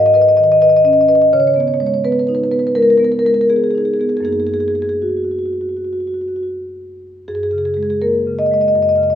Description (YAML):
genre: classical, contemporary piece for solo marimba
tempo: 78-85 BPM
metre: 4/4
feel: rubato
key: F# major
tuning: A4 = 440 Hz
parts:
  - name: marimba with soft mallets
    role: solo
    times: 0.0-9.2 s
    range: F#2 to D#5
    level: -13 LUFS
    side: left 1 dB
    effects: none
room: moderate large studio reverb, RT60 1.4 s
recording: minimal, uncompressed stereo recording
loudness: -12 LUFS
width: side -9 dB against mid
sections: 0.0-7.3 A section; 7.3-9.2 A section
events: none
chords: 0.0 Badd9/G#; 1.3 C#sus2; 4.2 F#69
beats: 0.62 | 1.33 2.04 2.75 3.49 | 4.25 5.01 5.77 6.53 | 7.28 8.01 8.75